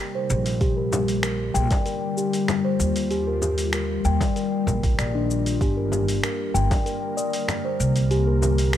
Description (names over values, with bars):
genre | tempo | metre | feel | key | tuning
organic downtempo | 96 BPM | 4/4 | straight | G minor | A4 = 440 Hz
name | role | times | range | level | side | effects
ethereal airy pad | sustained chords | 0.0-8.8 s | C3 to Bb4 | -28 LUFS | left 4 dB | ensemble chorus, built-in reverb, phaser, sidechain pumping
steel tongue drum | arpeggios | 0.0-8.8 s | D4 to G5 | -26 LUFS | left 1 dB | digital delay
upright bass | bass | 0.3-8.8 s | G1 to Eb2 | -24 LUFS | right 1 dB | tube saturation, sidechain pumping
dusty soul sampler-style drum kit | drums | 0.3-8.8 s | finger snaps, hi-hat, shaker | -30 LUFS | equal | none
electronic kick drum | drums | 0.6-6.8 s | none | -24 LUFS | right 1 dB | none
frame drum | percussion | 0.9-8.6 s | none | -32 LUFS | left 2 dB | none
room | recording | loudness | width
moderate concert hall reverb, RT60 2.0 s | none | -21 LUFS | side -11 dB against mid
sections
0.0-8.8 A section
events
none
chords
0.0 Cm7; 0.6 Bb6; 3.1 Ebadd9; 5.6 Gm; 8.1 Cm7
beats
| 0.61 1.24 1.86 2.49 | 3.11 3.74 4.36 4.99 | 5.61 6.24 6.86 7.49 | 8.11 8.74